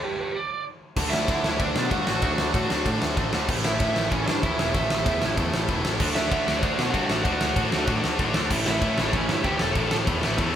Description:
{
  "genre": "punk rock",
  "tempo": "191 BPM",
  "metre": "4/4",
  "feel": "straight",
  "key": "unclear",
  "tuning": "A4 = 440 Hz",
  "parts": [
    { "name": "lead guitar through a small cranked amp", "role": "melody", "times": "0.0-9.9 s", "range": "C#4 to A5", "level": "-28 LUFS", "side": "right 2 dB", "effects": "overdrive" },
    { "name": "distorted electric guitar", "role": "riff", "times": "1.0-10.6 s", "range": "A2 to D4", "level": "-30 LUFS", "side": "right 6 dB", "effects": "overdrive" },
    { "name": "tight distorted guitar", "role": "riff", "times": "1.0-10.6 s", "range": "A2 to F#4", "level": "-30 LUFS", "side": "left 7 dB", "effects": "distortion" },
    { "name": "fuzz picked electric bass", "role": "bass", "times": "1.0-10.5 s", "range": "E1 to D3", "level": "-29 LUFS", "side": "equal", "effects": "overdrive" },
    { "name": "big rock drum kit", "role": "drums", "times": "1.0-10.5 s", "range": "crash cymbal, kick drum, ride cymbal, snare drum", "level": "-26 LUFS", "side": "equal", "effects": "none" },
    { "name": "scooped high-gain guitar", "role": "riff", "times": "6.0-10.6 s", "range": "A2 to D4", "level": "-30 LUFS", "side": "left 2 dB", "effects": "distortion" }
  ],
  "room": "moderate studio ambience, RT60 0.5 s",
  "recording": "band playing live in one room",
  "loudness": "-22 LUFS",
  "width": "side -10 dB against mid",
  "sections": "1.0-10.6 A section",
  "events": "stop 0.0-1.0",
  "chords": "0.0 G; 1.0 D; 3.5 A; 6.0 D; 8.5 A",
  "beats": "0.02 0.34 0.65 | 0.97 1.28 1.60 1.91 | 2.23 2.54 2.86 3.17 | 3.48 3.80 4.11 4.43 | 4.74 5.06 5.37 5.68 | 6.00 6.31 6.63 6.94 | 7.25 7.57 7.88 8.19 | 8.51 8.82 9.13 9.45 | 9.76 10.07 10.39"
}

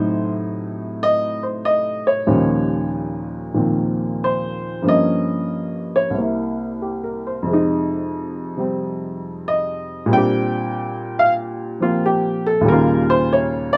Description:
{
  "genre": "solo jazz",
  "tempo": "93 BPM",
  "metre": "4/4",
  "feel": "swing 67% on 8ths, rubato",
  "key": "Eb mixolydian",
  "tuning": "A4 = 436 Hz",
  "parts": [
    { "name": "warm upright piano", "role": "solo", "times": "0.0-13.8 s", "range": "C2 to G5", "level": "-20 LUFS", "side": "equal", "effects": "none" }
  ],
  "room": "moderate club reverb, RT60 0.6 s",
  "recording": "none",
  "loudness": "-20 LUFS",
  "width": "mono",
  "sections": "0.0-13.8 A section",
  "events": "upright piano solo 0.0-13.8",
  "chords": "0.0 Adim7; 2.3 Eb13; 4.8 Gm7b5; 6.1 C7; 7.5 Fm7; 10.1 Bb69; 12.7 Eb9",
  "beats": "0.34 0.97 1.62 | 2.26 2.91 3.55 4.20 | 4.84 5.50 6.15 6.80 | 7.47 8.13 8.79 9.44 | 10.09 10.74 11.39 12.03 | 12.67 13.31"
}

